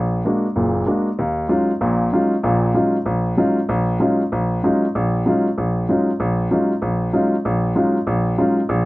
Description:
jazz; 192 BPM; 4/4; swing 63% on 8ths; Eb minor; A4 = 439 Hz
warm grand piano; solo; 0.0-8.9 s; F#1 to F#4; -16 LUFS; equal
moderate studio ambience, RT60 0.5 s; -16 LUFS; side -20 dB against mid
0.0-1.2 A section; 1.2-8.9 B section
0.0 Bbaug7; 1.2 Ebm11

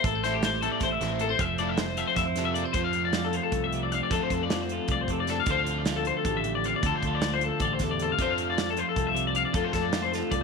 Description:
math rock and midwest emo; 309 BPM (eighths); 7/8; straight; F major; A4 = 440 Hz
twelve-string electric guitar; accompaniment; 0.0-10.4 s; F2 to C5; -32 LUFS; right 13 dB
twelve-string electric guitar; arpeggios; 0.0-10.4 s; G4 to F5; -28 LUFS; left 10 dB
fingered electric bass; bass; 0.0-10.4 s; F1 to F2; -34 LUFS; right 2 dB
modern studio drum kit; drums; 0.0-10.4 s; hi-hat, kick drum, snare drum; -32 LUFS; right 2 dB
crunchy overdriven guitar; riff; 0.2-10.4 s; D3 to A4; -35 LUFS; left 12 dB
moderate echo chamber reverb, RT60 1.3 s, small room ambience; 1960s-style stereo with parts hard left and right; -24 LUFS; side -4 dB against mid
0.0-2.8 A section; 2.8-10.4 B section
0.0 Am7; 1.4 Fmaj7; 2.8 F6; 5.5 Dm9; 8.2 F6

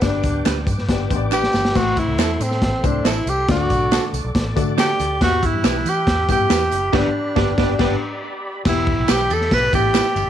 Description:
uptempo 1960s-style soul; 139 BPM; 4/4; straight; A4 = 438 Hz
mellow tenor saxophone; melody; 0.0-10.3 s; C4 to B4; -21 LUFS; equal
warm upright piano; accompaniment; 0.0-10.2 s; G2 to E5; -26 LUFS; left 12 dB
tonewheel organ; sustained chords; 0.0-10.3 s; G4 to D6; -31 LUFS; equal; overdrive, chorus vibrato, slow rotary speaker
vintage muted fingered electric bass; bass; 0.0-10.3 s; E1 to E3; -24 LUFS; equal; tube saturation
crunchy breakbeat drum kit; drums; 0.0-10.3 s; crash cymbal, hi-hat, kick drum, ride cymbal, snare drum; -21 LUFS; equal
tambourine and handclaps; percussion; 0.0-10.3 s; -32 LUFS; left 2 dB
congas; percussion; 0.2-10.3 s; -36 LUFS; right 13 dB
direct-recorded clean electric guitar; stabs; 0.5-10.1 s; C4 to B4; -26 LUFS; right 12 dB; tape echo
glockenspiel with hard plastic mallets; second line; 4.8-10.3 s; E6 to B6; -29 LUFS; right 14 dB; tape echo
moderate spring reverb, RT60 1.6 s, small room reverb; 1960s-style stereo with parts hard left and right; -16 LUFS; side -10 dB against mid
0.0-1.8 A section; 1.8-8.7 B section; 8.7-10.3 C section
drum fill 1.3-1.8; band accent 6.9-8.7
0.0 G; 1.8 Am; 3.5 D; 5.2 Em; 6.9 G; 8.7 Em

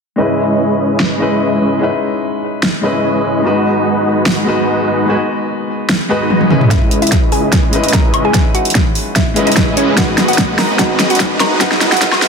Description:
future bass; 147 BPM; 4/4; half-time; A4 = 440 Hz
warm grand piano; accompaniment; 0.2-12.3 s; G#3 to D#5; -18 LUFS; left 2 dB; sidechain pumping, low-pass filter, digital delay
dense compressed supersaw; riff; 0.2-12.3 s; G#3 to G#5; -16 LUFS; equal; cassette tape, sidechain pumping, low-pass filter, digital delay
pop drum kit; drums; 1.0-12.3 s; hi-hat, snare drum, toms, woodblock; -15 LUFS; equal; overdrive, low-pass filter on snare, low-pass filter on toms, low-pass filter on hats, low-pass filter on perc, low-pass filter on room
mallet-like synth pluck; melody; 6.7-12.2 s; C#4 to A#5; -19 LUFS; equal; chorus, phaser, sidechain pumping, dub echo
wide detuned saw bass; bass; 6.7-12.3 s; G#1 to C#2; -24 LUFS; equal
electronic kick drum; drums; 6.7-12.1 s; -15 LUFS; equal
riser; sound effects; 8.6-12.3 s; -23 LUFS; right 2 dB
moderate lush hall reverb, RT60 2.4 s; dense, heavily limited modern master, high-pass filter; -11 LUFS; side -5 dB against mid
0.2-6.7 A section; 6.7-12.3 B section
filter sweep on drum 0.2-6.7; filter sweep on grand piano 0.2-6.7; drum fill 6.3-6.7, 6.7-12.3; build-up 6.7-12.3; filter sweep on supersaw synth 6.7-12.3; filter sweep on synth pluck 6.7-12.3; filter sweep 6.7-12.3
0.2 C#m9; 3.4 G#m7; 6.5 C#m9; 10.0 G#m7

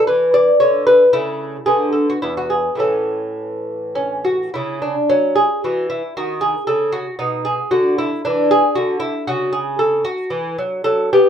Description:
classical, baroque-style dance for lute; 102-120 BPM; 3/4; rubato; A4 = 440 Hz
lute; solo; 0.0-11.3 s; E2 to D5; -15 LUFS; equal
moderate studio ambience, RT60 0.5 s; band playing live in one room; -15 LUFS; side -8 dB against mid
0.0-4.5 A section; 4.5-11.3 B section
0.0 E5; 1.1 A/C#; 1.7 Bm/D; 2.2 E; 2.8 A; 4.5 C#madd11; 6.1 B; 7.7 Dadd9; 9.3 C#madd11

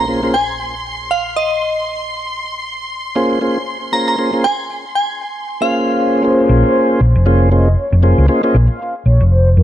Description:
deep house; 117 BPM; 4/4; swing 58% on 16ths; A4 = 441 Hz
glassy synth bell; melody; 0.0-6.0 s; Eb5 to Bb5; -18 LUFS; equal; chorus, phaser, tape echo
mellow tonewheel organ; stabs; 0.0-8.6 s; Bb3 to C5; -15 LUFS; equal; slow rotary speaker, low-pass filter, tape echo
hollow-body short-scale fingered electric bass; bass; 0.0-9.6 s; F1 to F2; -11 LUFS; equal; low-pass filter
rich studio violin section; texture; 0.0-6.2 s; C6; -25 LUFS; left 1 dB
mellow horn-like synth lead; melody; 6.2-9.6 s; Bb4 to F5; -22 LUFS; equal; chorus, tape echo
digital ambience; dry, gritty hardware recording; -13 LUFS; side -12 dB against mid
0.0-6.2 A section; 6.2-9.6 B section
drop 6.2-9.6
0.0 Bbm9

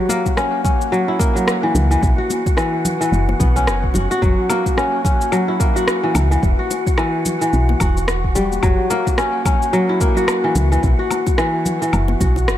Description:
organic downtempo; 109 BPM; 4/4; swing 59% on 16ths; A4 = 439 Hz
kora; arpeggios; 0.0-12.6 s; E3 to F#4; -18 LUFS; left 1 dB; digital delay
wind-like tuned noise texture; texture; 0.0-12.6 s; F#4 to F#5; -27 LUFS; left 2 dB; built-in reverb
electronic cabasa, rim click and woodblock; drums; 0.1-12.6 s; -25 LUFS; left 1 dB; studio reverb
congas and bongos; percussion; 0.1-12.5 s; -27 LUFS; left 2 dB
electronic kick drum; drums; 0.3-12.3 s; -18 LUFS; equal; studio reverb
woody FM bass; bass; 1.7-12.6 s; E1 to C#2; -17 LUFS; equal; tube saturation
light reverb; -15 LUFS; side -12 dB against mid
0.0-12.6 A section
0.0 F#7; 2.0 B5; 6.4 Em; 8.6 F#7; 10.8 B5

